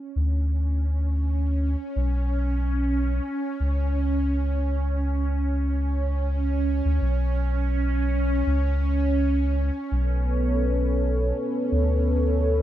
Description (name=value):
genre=trip hop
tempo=83 BPM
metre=4/4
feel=swing 55% on 16ths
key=B minor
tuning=A4 = 441 Hz
part: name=bowed-like drone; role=texture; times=0.0-12.6 s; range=C#4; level=-28 LUFS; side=right 2 dB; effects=built-in reverb, phaser
part: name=soft dub sub bass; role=bass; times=0.2-12.6 s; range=B1 to D2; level=-23 LUFS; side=equal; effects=none
part: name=dark analog pad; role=sustained chords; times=9.9-12.6 s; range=B3 to C#5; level=-25 LUFS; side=equal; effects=chorus
room=little or no reverb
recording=rough home demo mix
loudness=-22 LUFS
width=side -12 dB against mid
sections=0.0-12.6 A section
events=none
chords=0.0 Bm9